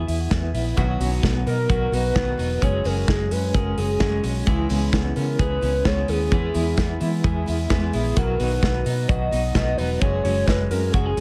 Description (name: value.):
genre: jangly indie pop.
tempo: 130 BPM.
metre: 4/4.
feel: straight.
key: unclear.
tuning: A4 = 440 Hz.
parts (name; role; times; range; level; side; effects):
electric guitar through a small old amp; arpeggios; 0.0-11.2 s; E3 to G#4; -31 LUFS; equal; tremolo, analog delay.
vintage muted fingered electric bass; bass; 0.0-11.2 s; E1 to E3; -27 LUFS; equal; none.
modern studio drum kit; drums; 0.1-11.2 s; hi-hat, kick drum, snare drum; -27 LUFS; equal; none.
picked steel-string acoustic guitar; accompaniment; 0.8-11.2 s; B2 to F#4; -31 LUFS; equal; none.
warbly nostalgic lead; melody; 1.5-11.2 s; G#4 to D#5; -28 LUFS; equal; chorus, analog delay.
room: light reverb, small room ambience.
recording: echo-heavy mix.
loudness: -22 LUFS.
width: mono.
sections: 0.0-11.2 A section.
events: none.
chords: 0.0 E; 0.8 B; 2.6 F#sus2; 4.5 C#m7; 6.3 E; 8.2 B; 10.0 F#sus2.